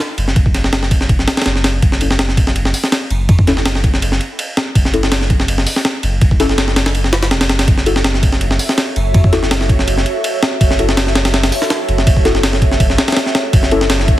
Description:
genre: drum and bass, jungle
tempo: 164 BPM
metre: 4/4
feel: swing 53% on 16ths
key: F# minor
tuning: A4 = 440 Hz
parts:
  - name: breakbeat sampler-style drum kit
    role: drums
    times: 0.0-14.2 s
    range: hi-hat, kick drum, ride cymbal, snare drum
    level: -13 LUFS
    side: equal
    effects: none
  - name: saturated sub bass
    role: bass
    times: 0.2-14.2 s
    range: E1 to F#1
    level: -18 LUFS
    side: equal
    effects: none
  - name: deep mellow chord stab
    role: stabs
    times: 2.0-13.8 s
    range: C#4 to A4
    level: -20 LUFS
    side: left 3 dB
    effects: chorus, dub echo
room: light reverb, digital ambience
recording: heavily compressed radio sound, multiband compression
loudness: -12 LUFS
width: side -14 dB against mid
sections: 0.0-14.2 A section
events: none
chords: 0.0 N.C.; 7.7 F#m7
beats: 0.00 | 0.36 0.73 1.09 1.46 | 1.83 2.19 2.56 2.92 | 3.29 3.66 4.02 4.39 | 4.75 5.12 5.49 5.85 | 6.22 6.58 6.95 7.31 | 7.68 8.05 8.41 8.78 | 9.14 9.51 9.88 10.24 | 10.61 10.97 11.34 11.70 | 12.07 12.44 12.80 13.17 | 13.53 13.90

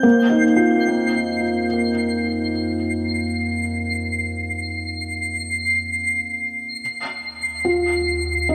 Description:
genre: ambient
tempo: 71 BPM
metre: 4/4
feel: straight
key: unclear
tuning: A4 = 444 Hz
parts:
  - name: felt-muted upright piano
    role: arpeggios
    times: 0.0-8.5 s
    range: Bb3 to F4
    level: -23 LUFS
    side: equal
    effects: delay
  - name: round analog bass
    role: bass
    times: 0.0-8.5 s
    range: Eb2 to F2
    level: -34 LUFS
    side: equal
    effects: none
  - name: twinkling granular texture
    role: texture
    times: 0.0-8.5 s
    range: C7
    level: -26 LUFS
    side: equal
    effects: built-in reverb
room: wet cathedral reverb, RT60 5.2 s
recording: in a vast, echoing space, cassette tape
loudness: -21 LUFS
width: mono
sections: 0.0-8.5 A section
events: fade-in on analog synth bass 0.0-8.5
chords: 0.0 F5; 6.8 Ebsus2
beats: | 0.04 0.89 1.73 2.58 | 3.42 4.27 5.11 5.96 | 6.80 7.65 8.49

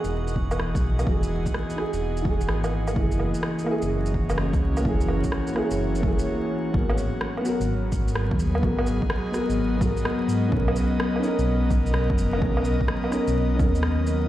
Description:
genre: future garage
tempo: 127 BPM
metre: 4/4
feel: swing 66% on 16ths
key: G# minor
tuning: A4 = 439 Hz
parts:
  - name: dark upright piano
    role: accompaniment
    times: 0.0-14.3 s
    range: A#3 to A#4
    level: -29 LUFS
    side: equal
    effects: sidechain pumping, low-pass filter, analog delay
  - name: airy breathy pad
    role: sustained chords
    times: 0.0-14.3 s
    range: E3 to D#5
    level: -28 LUFS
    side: equal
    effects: chorus, vintage 12-bit sampler grit, sidechain pumping
  - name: dark detuned saw bass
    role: bass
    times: 0.0-14.3 s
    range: E1 to G#2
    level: -25 LUFS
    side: equal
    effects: sidechain pumping
  - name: electronic shaker, woodblock and rim click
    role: drums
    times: 0.0-14.2 s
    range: none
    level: -32 LUFS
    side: right 1 dB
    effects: overdrive
  - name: drifting glass-harmonics texture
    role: texture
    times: 0.0-6.3 s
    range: F#4 to F#5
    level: -42 LUFS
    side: right 3 dB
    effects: chorus, built-in reverb
  - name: electronic kick drum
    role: drums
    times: 0.4-13.7 s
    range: none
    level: -26 LUFS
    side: equal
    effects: overdrive
room: light reverb, digital ambience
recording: played on a big sound system in a bare room, large studio reverb, vinyl crackle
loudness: -22 LUFS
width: side -13 dB against mid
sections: 0.0-6.7 A section; 6.7-14.3 B section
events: break 6.3-6.7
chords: 0.0 Emaj7; 3.0 F#7; 6.7 G#m7; 10.5 Bmaj7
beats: 0.12 0.60 | 1.07 1.54 2.02 2.49 | 2.96 3.43 3.90 4.38 | 4.85 5.32 5.79 6.27 | 6.74 7.21 7.68 8.16 | 8.63 9.10 9.57 10.05 | 10.52 10.99 11.46 11.94 | 12.41 12.88 13.35 13.83

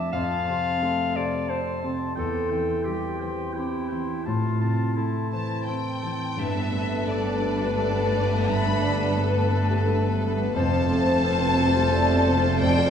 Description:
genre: cinematic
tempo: 87 BPM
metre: 3/4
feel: rubato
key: unclear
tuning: A4 = 440 Hz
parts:
  - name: bright clarinet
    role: second line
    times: 0.0-12.9 s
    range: E4 to F5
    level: -31 LUFS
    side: left 1 dB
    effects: none
  - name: mellow hollow concert flute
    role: second line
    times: 0.0-12.9 s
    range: A4 to D6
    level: -33 LUFS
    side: equal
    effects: none
  - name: warm cor anglais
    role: second line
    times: 0.0-12.9 s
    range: G5 to A5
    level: -34 LUFS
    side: left 4 dB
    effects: none
  - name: warm concert grand piano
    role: accompaniment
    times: 0.0-12.9 s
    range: E2 to A4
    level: -28 LUFS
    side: equal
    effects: none
  - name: concert harp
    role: arpeggios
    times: 0.0-12.9 s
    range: E2 to D5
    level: -30 LUFS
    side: left 1 dB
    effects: none
  - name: rich studio violin section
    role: melody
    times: 5.3-12.9 s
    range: D5 to B5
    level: -30 LUFS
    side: left 4 dB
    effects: none
  - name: clear studio violin section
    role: second line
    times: 6.4-12.9 s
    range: A4 to C5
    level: -33 LUFS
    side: left 4 dB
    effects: none
  - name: rich studio viola section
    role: accompaniment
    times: 6.4-12.9 s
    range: A3 to F4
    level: -34 LUFS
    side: right 1 dB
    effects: none
  - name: dark French horn section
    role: sustained chords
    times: 6.4-12.9 s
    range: A3 to C4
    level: -29 LUFS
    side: left 1 dB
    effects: none
  - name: rich studio double bass section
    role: bass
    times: 6.4-12.9 s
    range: F1 to G1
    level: -28 LUFS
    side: right 2 dB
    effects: none
  - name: warm studio cello section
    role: bass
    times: 6.4-12.9 s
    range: F2 to G2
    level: -32 LUFS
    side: right 2 dB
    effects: none
room: wet scoring stage reverb, RT60 1.7 s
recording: recorded in a church or concert hall, small room ambience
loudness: -22 LUFS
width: side -8 dB against mid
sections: 0.0-6.4 A section; 6.4-12.9 A section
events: none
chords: 0.1 F; 2.2 C/E; 4.3 Am; 6.4 Gadd9; 10.6 F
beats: | 0.13 0.81 1.49 | 2.17 2.85 3.55 | 4.25 4.96 5.67 | 6.38 7.07 7.77 | 8.48 9.18 9.87 | 10.56 11.25 11.93 | 12.61

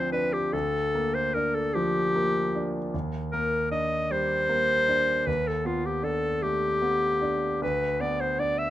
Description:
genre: classical, impressionist duo for clarinet and grand piano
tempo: 51 BPM (dotted quarters)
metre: 6/8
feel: rubato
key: unclear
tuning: A4 = 440 Hz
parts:
  - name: clear clarinet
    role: melody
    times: 0.0-8.7 s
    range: F4 to E5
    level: -25 LUFS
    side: left 1 dB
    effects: none
  - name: clear concert grand piano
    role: accompaniment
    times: 0.0-8.7 s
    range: D2 to D4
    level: -29 LUFS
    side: right 1 dB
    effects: none
room: light reverb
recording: close, detailed microphones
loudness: -24 LUFS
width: side -13 dB against mid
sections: 0.0-8.7 A section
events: none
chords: 0.0 Dm7; 0.5 Gm7/D; 2.9 Ebmaj7; 5.3 Gadd9/Eb; 7.6 D5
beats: | 0.53 1.75 | 2.93 4.11 | 5.27 6.43 | 7.62

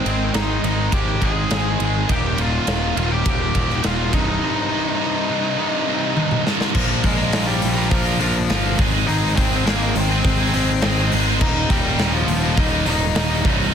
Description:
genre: quiet-loud alternative rock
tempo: 103 BPM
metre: 4/4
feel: straight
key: unclear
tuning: A4 = 440 Hz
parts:
  - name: octave-fuzz lead guitar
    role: melody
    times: 0.0-13.4 s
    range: F3 to Ab5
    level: -25 LUFS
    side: left 3 dB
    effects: distortion, slapback echo
  - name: twangy electric guitar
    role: arpeggios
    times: 0.0-2.1 s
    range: Ab2 to Ab4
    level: -31 LUFS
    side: right 2 dB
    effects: none
  - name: high-gain distorted guitar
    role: riff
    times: 0.0-13.7 s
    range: C2 to Bb4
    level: -25 LUFS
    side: left 13 dB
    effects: distortion
  - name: high-gain distorted guitar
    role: riff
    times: 0.0-13.7 s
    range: C2 to Bb4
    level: -24 LUFS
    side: right 15 dB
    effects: distortion
  - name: fuzz picked electric bass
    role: bass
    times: 0.1-13.7 s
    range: C1 to Bb1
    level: -22 LUFS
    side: equal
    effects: overdrive
  - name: big rock drum kit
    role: drums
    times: 0.1-13.6 s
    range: crash cymbal, hi-hat, kick drum, ride cymbal, snare drum, toms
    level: -22 LUFS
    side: equal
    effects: none
room: little or no reverb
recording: dense, heavily limited modern master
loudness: -17 LUFS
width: side -8 dB against mid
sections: 0.0-6.8 A section; 6.8-13.7 B section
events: drum fill 6.2-6.8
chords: 0.0 Ab; 2.1 Eb; 4.1 Cm; 6.8 Bb; 8.8 Ab; 11.4 Eb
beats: 0.34 0.93 1.51 | 2.09 2.68 3.26 3.84 | 4.42 5.01 5.59 6.17 | 6.75 7.34 7.92 8.50 | 9.08 9.66 10.25 10.83 | 11.41 11.99 12.58 13.16

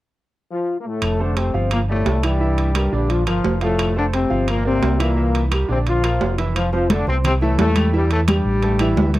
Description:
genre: latin, salsa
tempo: 174 BPM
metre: 4/4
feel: straight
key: F major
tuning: A4 = 439 Hz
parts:
  - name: bright trombone section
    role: melody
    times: 0.5-9.1 s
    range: G2 to F4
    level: -21 LUFS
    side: left 2 dB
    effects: none
  - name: fingered electric bass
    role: bass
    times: 1.0-9.2 s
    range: F1 to E2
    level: -20 LUFS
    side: equal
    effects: none
  - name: claves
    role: percussion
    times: 1.0-9.0 s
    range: none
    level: -35 LUFS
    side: left 5 dB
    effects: none
  - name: timbales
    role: percussion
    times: 1.0-9.2 s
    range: none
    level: -26 LUFS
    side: right 5 dB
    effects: none
  - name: clear grand piano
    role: accompaniment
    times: 1.2-9.2 s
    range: D3 to C6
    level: -24 LUFS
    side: right 2 dB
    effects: none
  - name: congas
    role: percussion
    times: 6.6-9.2 s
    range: none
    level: -21 LUFS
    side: left 1 dB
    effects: none
room: small room ambience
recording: dry, close 1970s-style studio recording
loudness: -16 LUFS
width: side -16 dB against mid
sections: 0.0-1.0 A section; 1.0-6.6 B section; 6.6-9.2 C section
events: none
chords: 0.0 F; 1.0 Fadd9; 1.7 Gm7; 2.4 C7; 3.1 Bb; 3.8 Fadd9; 4.5 Gm7; 5.2 C7; 5.9 Bb; 6.6 Fmaj7; 7.9 Emadd11; 8.6 A5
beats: 0.33 0.68 | 1.02 1.37 1.72 2.06 | 2.41 2.75 3.10 3.44 | 3.79 4.13 4.48 4.83 | 5.17 5.52 5.86 6.21 | 6.55 6.90 7.24 7.59 | 7.93 8.28 8.62 8.97

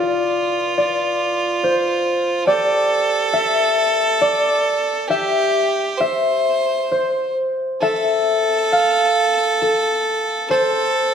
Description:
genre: celtic folk, Celtic slow air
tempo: 67 BPM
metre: 3/4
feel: uneven beats, rubato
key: unclear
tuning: A4 = 440 Hz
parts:
  - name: bright fiddle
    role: second line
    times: 0.0-11.1 s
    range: F4 to C5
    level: -20 LUFS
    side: right 2 dB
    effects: none
  - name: concert harp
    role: accompaniment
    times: 0.0-11.1 s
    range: F4 to F5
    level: -18 LUFS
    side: left 1 dB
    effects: none
room: moderate recital hall reverb, RT60 1.4 s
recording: none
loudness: -16 LUFS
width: side -7 dB against mid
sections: 0.0-11.1 A section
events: harp solo 0.0-11.1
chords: none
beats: 0.77 1.63 | 2.47 3.33 4.20 | 5.09 5.99 6.91 | 7.81 8.71 9.62 | 10.50

